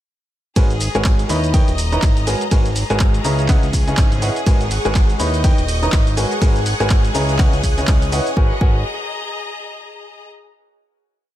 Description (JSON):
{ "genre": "piano house", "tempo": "123 BPM", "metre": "4/4", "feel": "swing 58% on 16ths", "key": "G# minor", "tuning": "A4 = 440 Hz", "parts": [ { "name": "clear upright piano", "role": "riff", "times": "0.6-8.8 s", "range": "C#3 to B5", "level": "-21 LUFS", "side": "equal", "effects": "sidechain pumping, ping-pong delay" }, { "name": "fat analog bass", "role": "bass", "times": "0.6-8.8 s", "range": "D#1 to D#2", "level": "-21 LUFS", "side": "equal", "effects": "sidechain pumping" }, { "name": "electronic kick drum", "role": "drums", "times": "0.6-8.7 s", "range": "none", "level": "-15 LUFS", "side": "equal", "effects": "none" }, { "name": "punchy analog drum machine", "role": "drums", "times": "0.6-8.3 s", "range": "handclaps, hi-hat, ride cymbal, shaker", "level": "-26 LUFS", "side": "right 1 dB", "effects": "none" }, { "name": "bright studio string section", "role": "texture", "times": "0.6-10.3 s", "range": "C#4 to A#5", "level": "-28 LUFS", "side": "left 3 dB", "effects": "sidechain pumping" }, { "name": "string machine, violins", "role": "sustained chords", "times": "4.5-8.6 s", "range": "G#4 to G6", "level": "-26 LUFS", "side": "left 1 dB", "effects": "ensemble chorus, sidechain pumping" } ], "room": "little or no reverb", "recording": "none", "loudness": "-14 LUFS", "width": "side -13 dB against mid", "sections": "0.6-8.4 drop; 8.4-10.3 final chord", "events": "drop 0.6-8.4", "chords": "0.6 G#m11; 1.3 D#7b9b13; 2.3 G#m11; 3.2 C#m11; 4.5 G#m11; 5.2 D#7b9b13; 6.2 G#m11; 7.1 C#m11; 8.4 G#m11" }